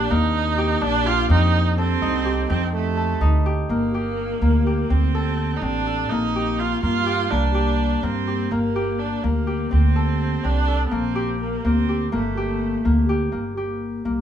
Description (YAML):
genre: contemporary instrumental, chamber music in an uneven meter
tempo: 249 BPM (eighths)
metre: 5/8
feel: straight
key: G minor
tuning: A4 = 440 Hz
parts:
  - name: rich viola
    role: second line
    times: 0.0-13.1 s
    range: A3 to F4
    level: -25 LUFS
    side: right 7 dB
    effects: none
  - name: Celtic harp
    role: arpeggios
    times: 0.0-14.2 s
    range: Bb3 to A4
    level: -24 LUFS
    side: left 3 dB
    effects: none
  - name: upright bass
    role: bass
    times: 0.0-14.2 s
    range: G1 to G2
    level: -22 LUFS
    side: equal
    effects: none
room: light reverb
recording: small room ambience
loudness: -19 LUFS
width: side -9 dB against mid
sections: 0.0-3.7 A section; 3.7-13.3 B section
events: none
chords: 0.0 Ebmaj7; 1.3 F7; 3.7 Gm; 4.9 D5; 6.1 Bb5; 7.3 C5; 8.5 Gm; 9.7 D5; 10.9 Bbsus2; 12.1 Gmadd9; 13.3 Gm